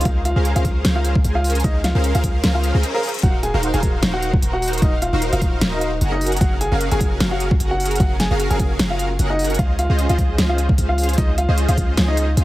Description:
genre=future bass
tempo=151 BPM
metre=4/4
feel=swing 55% on 16ths, half-time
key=Eb dorian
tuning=A4 = 440 Hz
part: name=big bright polysynth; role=riff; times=0.0-12.4 s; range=Db4 to Ab5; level=-24 LUFS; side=equal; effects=ensemble chorus, sidechain pumping
part: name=warm 808-style bass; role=bass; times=0.0-12.4 s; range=Eb1 to Db2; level=-20 LUFS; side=equal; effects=sidechain pumping
part: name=pop drum kit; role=drums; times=0.0-12.4 s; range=hi-hat, snare drum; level=-24 LUFS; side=equal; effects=none
part: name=warm grand piano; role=melody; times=0.1-12.3 s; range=Eb4 to Bb5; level=-25 LUFS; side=equal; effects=sidechain pumping, digital delay
part: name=electronic kick drum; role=drums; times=0.1-11.9 s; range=none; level=-18 LUFS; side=equal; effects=overdrive
part: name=reverse cymbal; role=sound effects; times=2.6-3.2 s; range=none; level=-35 LUFS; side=left 6 dB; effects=none
room=digital ambience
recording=heavily compressed radio sound, multiband compression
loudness=-16 LUFS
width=side -16 dB against mid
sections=0.0-12.4 A section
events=reverse cymbal 2.6-3.2; break 2.8-3.2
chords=0.1 Bbm9/Db; 3.2 Ebm69; 6.2 Gbmaj9; 9.6 Dbmaj9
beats=| 0.05 0.45 0.85 1.25 | 1.64 2.04 2.44 2.83 | 3.23 3.63 4.03 4.42 | 4.82 5.22 5.62 6.01 | 6.41 6.81 7.21 7.60 | 8.00 8.40 8.79 9.19 | 9.59 9.99 10.38 10.78 | 11.18 11.58 11.97 12.37

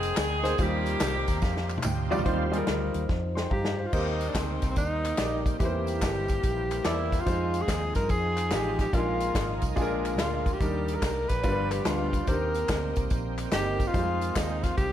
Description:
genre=uptempo gospel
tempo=144 BPM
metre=4/4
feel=swing 65% on 8ths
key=Eb major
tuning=A4 = 440 Hz
part: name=bright saxophone section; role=melody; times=0.0-1.9 s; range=Bb3 to Ab4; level=-30 LUFS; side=equal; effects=none
part: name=bright tonewheel organ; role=sustained chords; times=0.0-14.9 s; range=Eb3 to D5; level=-38 LUFS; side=right 4 dB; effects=fast rotary speaker, chorus vibrato
part: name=vintage muted fingered electric bass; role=bass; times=0.0-14.9 s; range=F1 to G2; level=-32 LUFS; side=equal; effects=none
part: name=natural country drum kit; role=drums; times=0.0-14.9 s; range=crash cymbal, hi-hat, kick drum, snare drum, toms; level=-30 LUFS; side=equal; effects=none
part: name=tambourine and handclaps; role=percussion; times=0.0-14.9 s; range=none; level=-41 LUFS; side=left 1 dB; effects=none
part: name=clear concert grand piano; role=accompaniment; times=0.4-14.5 s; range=G2 to C6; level=-31 LUFS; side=left 1 dB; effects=none
part: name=dark French horn section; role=sustained chords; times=2.2-14.9 s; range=Eb3 to D5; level=-39 LUFS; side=equal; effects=none
part: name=breathy tenor saxophone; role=melody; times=3.5-14.9 s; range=C4 to Cb5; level=-31 LUFS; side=equal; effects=none
room=light reverb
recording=none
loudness=-25 LUFS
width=side -11 dB against mid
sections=0.0-2.3 A section; 2.3-3.9 B section; 3.9-14.9 C section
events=grand piano fill 1.0-2.3; drum fill 1.4-2.3, 3.1-3.9; tonewheel organ solo 2.3-3.9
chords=0.0 Bb9sus4; 0.6 Eb69; 3.9 Eb6; 5.6 C7; 7.3 Fm7; 8.9 Bb7sus4; 9.8 Bb7; 10.6 Ebmaj7; 11.4 G7; 12.3 Cm7; 13.9 Fm7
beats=0.17 | 0.59 1.01 1.43 1.84 | 2.26 2.68 3.10 3.51 | 3.93 4.35 4.77 5.18 | 5.60 6.02 6.43 6.85 | 7.27 7.69 8.10 8.52 | 8.94 9.35 9.77 10.19 | 10.60 11.02 11.44 11.86 | 12.27 12.69 13.11 13.52 | 13.94 14.36 14.78

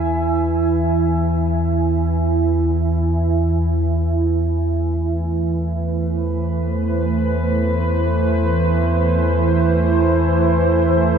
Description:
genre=dark ambient drone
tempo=free time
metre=none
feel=none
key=unclear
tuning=A4 = 445 Hz
part: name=deep dark ambient pad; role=sustained chords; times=0.0-11.2 s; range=E3 to G#5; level=-19 LUFS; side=right 3 dB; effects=chorus, built-in reverb
part: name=deep rumbling drone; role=drone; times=0.0-11.2 s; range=E2 to E3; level=-19 LUFS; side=left 1 dB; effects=built-in reverb, phaser
room=wet huge ambient reverb, RT60 9.0 s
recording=studio reverb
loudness=-16 LUFS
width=side -7 dB against mid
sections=0.0-11.2 A section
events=none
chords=0.0 E; 3.7 Am/E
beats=free time

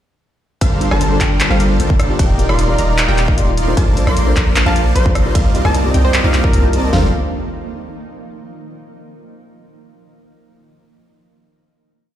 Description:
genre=future bass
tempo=152 BPM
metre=4/4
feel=half-time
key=G minor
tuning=A4 = 439 Hz
part: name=shimmering ambient pad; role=sustained chords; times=1.9-7.1 s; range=C3 to D5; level=-29 LUFS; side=right 1 dB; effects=chorus, built-in reverb, sidechain pumping
part: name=wide unison pluck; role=arpeggios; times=0.6-7.1 s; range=F5 to C6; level=-27 LUFS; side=equal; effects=sidechain pumping
part: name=dense compressed supersaw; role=riff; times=0.6-7.1 s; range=G3 to C6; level=-20 LUFS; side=equal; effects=sidechain pumping, ping-pong delay
part: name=long sustained 808-style bass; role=bass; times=0.6-7.1 s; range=Eb1 to C2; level=-16 LUFS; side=equal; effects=sidechain pumping
part: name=big-room dance drum kit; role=drums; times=0.6-7.0 s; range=hi-hat, kick drum, snare drum, toms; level=-15 LUFS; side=equal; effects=none
part: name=big-room dance drum kit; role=drums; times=0.6-6.8 s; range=handclaps, hi-hat, ride cymbal, rim click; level=-21 LUFS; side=equal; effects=none
part: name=soft round pluck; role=accompaniment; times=0.8-7.1 s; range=Bb3 to D5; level=-23 LUFS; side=left 3 dB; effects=chorus, sidechain pumping, ping-pong delay
part: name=plucky unison lead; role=melody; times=4.7-6.9 s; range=Bb4 to F5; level=-24 LUFS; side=equal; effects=sidechain pumping, ping-pong delay
room=little or no reverb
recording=played on a big sound system in a bare room, large studio reverb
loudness=-12 LUFS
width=side -11 dB against mid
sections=0.6-6.9 drop; 6.9-8.5 final chord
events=drop 0.6-6.9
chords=0.6 Gm11; 2.2 Ebmaj9; 3.8 Bbmaj9; 5.4 Cm11; 6.9 Gm11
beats=| 0.61 1.01 1.40 1.80 | 2.19 2.59 2.98 3.38 | 3.77 4.17 4.56 4.96 | 5.35 5.75 6.14 6.54 | 6.93

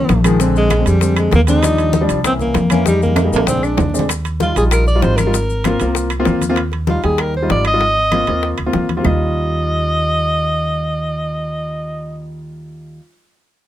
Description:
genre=Afro-Cuban jazz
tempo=194 BPM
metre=4/4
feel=straight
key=Eb major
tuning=A4 = 440 Hz
part: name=warm alto saxophone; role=melody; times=0.0-12.3 s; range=G3 to Eb5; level=-18 LUFS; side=equal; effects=plate reverb
part: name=warm grand piano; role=accompaniment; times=0.0-13.0 s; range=D3 to G4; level=-20 LUFS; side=left 1 dB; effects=none
part: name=upright bass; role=bass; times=0.0-13.0 s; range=Ab1 to F2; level=-18 LUFS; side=equal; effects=none
part: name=bongos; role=percussion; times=0.1-9.1 s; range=none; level=-25 LUFS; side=left 7 dB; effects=none
part: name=congas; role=percussion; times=0.1-9.1 s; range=none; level=-23 LUFS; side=left 3 dB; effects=none
part: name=maracas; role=percussion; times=0.1-6.6 s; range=none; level=-29 LUFS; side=left 8 dB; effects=none
part: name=timbales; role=percussion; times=0.1-9.1 s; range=none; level=-24 LUFS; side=right 7 dB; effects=none
part: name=claves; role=percussion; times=0.2-9.1 s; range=none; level=-29 LUFS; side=left 5 dB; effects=none
room=light reverb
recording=close, detailed microphones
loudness=-13 LUFS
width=side -12 dB against mid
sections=0.0-4.1 A section; 4.1-9.0 B section; 9.0-11.5 C section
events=drum fill 2.9-4.1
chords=0.4 Bb9; 1.6 Ebmaj7; 2.2 C7b9; 2.9 Fm7; 3.5 Bb9; 4.1 Ebadd9; 5.3 Ab69; 6.6 Ebadd9; 7.8 Ab69; 9.0 Ebadd9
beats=0.09 | 0.40 0.70 1.01 1.32 | 1.63 1.94 2.25 2.55 | 2.86 3.17 3.48 3.79 | 4.10 4.41 4.71 5.02 | 5.33 5.64 5.95 6.26 | 6.57 6.88 7.19 7.50 | 7.81 8.12 8.43 8.74 | 9.05 9.36 9.67 9.98 | 10.29 10.60 10.90 11.21

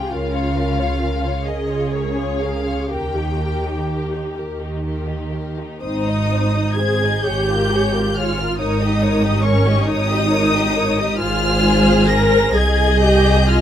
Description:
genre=classical, slow romantic movement for string orchestra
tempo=40-48 BPM (dotted quarters)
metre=6/8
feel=rubato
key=Ab major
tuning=A4 = 440 Hz
part: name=warm studio violin section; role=melody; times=0.0-13.6 s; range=Db5 to Bb6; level=-24 LUFS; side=left 2 dB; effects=none
part: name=warm studio violin section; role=second line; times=0.0-13.6 s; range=C4 to Eb5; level=-23 LUFS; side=left 4 dB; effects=none
part: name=dark studio viola section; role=accompaniment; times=0.0-13.6 s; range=Db4 to Bb4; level=-22 LUFS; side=equal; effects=none
part: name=dark studio cello section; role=bass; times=0.1-13.6 s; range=C2 to Eb3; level=-22 LUFS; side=right 2 dB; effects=none
part: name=warm studio double bass section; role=bass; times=0.1-13.6 s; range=Ab1 to Eb2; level=-22 LUFS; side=right 1 dB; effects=none
room=light reverb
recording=close, detailed microphones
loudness=-16 LUFS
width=side -10 dB against mid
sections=0.0-5.8 A section; 5.8-13.6 B section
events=none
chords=0.1 Bbm/Db; 2.9 Eb; 5.8 Ab; 7.3 Bbm7/Ab; 8.6 Eb7/Ab; 11.2 Ab; 12.5 Ab/C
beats=| 0.11 1.46 | 2.91 4.38 | 5.83 7.25 | 8.60 9.87 | 11.20 12.54

